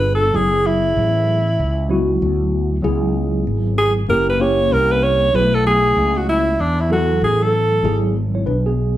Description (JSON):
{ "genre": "hip hop, jazz-hop", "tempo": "96 BPM", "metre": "4/4", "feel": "swing 62% on 16ths", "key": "F# minor", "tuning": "A4 = 439 Hz", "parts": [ { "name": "clear alto saxophone", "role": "melody", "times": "0.0-8.0 s", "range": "D4 to C#5", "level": "-17 LUFS", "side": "right 1 dB", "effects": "none" }, { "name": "mellow tine electric piano", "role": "accompaniment", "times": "0.0-9.0 s", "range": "F#3 to C#5", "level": "-20 LUFS", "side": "equal", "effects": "medium stereo tremolo" }, { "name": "fretless electric bass", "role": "bass", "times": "0.0-9.0 s", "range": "F#1 to E2", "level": "-20 LUFS", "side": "equal", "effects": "none" } ], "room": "moderate large studio reverb, RT60 0.8 s", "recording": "band playing live in one room", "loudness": "-15 LUFS", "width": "side -13 dB against mid", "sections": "0.0-9.0 A section", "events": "alto saxophone solo 0.0-9.0", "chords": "0.3 F#m9; 2.8 C#m7; 4.1 F#7b9; 5.3 Bsus2; 7.8 G#m7b5", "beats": "| 0.34 0.97 1.59 2.22 | 2.84 3.47 4.09 4.72 | 5.34 5.97 6.59 7.22 | 7.84 8.47" }